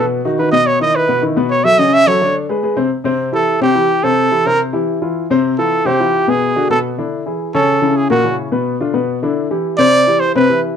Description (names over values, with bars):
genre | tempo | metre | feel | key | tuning
jazz | 214 BPM | 4/4 | straight | A minor | A4 = 440 Hz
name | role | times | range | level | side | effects
warm trumpet | melody | 0.0-10.6 s | F#4 to E5 | -13 LUFS | right 2 dB | none
warm baby grand piano | accompaniment | 0.0-10.7 s | A#2 to D5 | -15 LUFS | left 3 dB | none
room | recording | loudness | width
moderate club reverb, RT60 0.6 s | dark, warm production | -12 LUFS | side -8 dB against mid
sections
0.0-2.9 A section; 2.9-10.8 A section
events
trumpet solo 0.0-2.9, 2.9-10.8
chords
0.1 B; 0.7 Esus2; 1.8 Dmaj9/C#; 2.4 G#dim; 2.9 Am7; 4.0 C; 5.2 Fmaj7; 6.3 Bm; 6.8 E7; 7.4 Amaj7; 8.0 F#7; 8.5 Bdim; 9.1 E5; 9.6 Cmaj9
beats
0.11 0.39 | 0.67 0.95 1.23 1.51 | 1.79 2.07 2.35 2.63 | 2.91 3.19 3.48 3.76 | 4.04 4.32 4.60 4.88 | 5.16 5.44 5.72 6.00 | 6.28 6.56 6.84 7.12 | 7.41 7.68 7.97 8.25 | 8.53 8.81 9.09 9.37 | 9.65 9.93 10.21 10.49